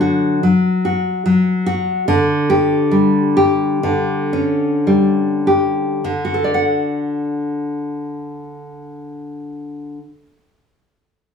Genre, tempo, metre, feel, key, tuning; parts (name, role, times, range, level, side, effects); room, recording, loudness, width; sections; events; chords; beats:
romantic piece for solo classical guitar; 47-74 BPM; 4/4; rubato; D major; A4 = 438 Hz
nylon-string guitar; solo; 0.0-10.5 s; D3 to F#5; -15 LUFS; left 1 dB
moderate booth ambience, RT60 0.2 s; studio reverb; -14 LUFS; side -6 dB against mid
0.0-6.0 A section; 6.0-10.1 B section
slowing down 0.0-6.0
0.0 D; 2.1 Dsus4; 6.0 D
0.42 1.25 | 2.07 2.91 3.82 4.86 | 6.03 7.04 8.04 9.08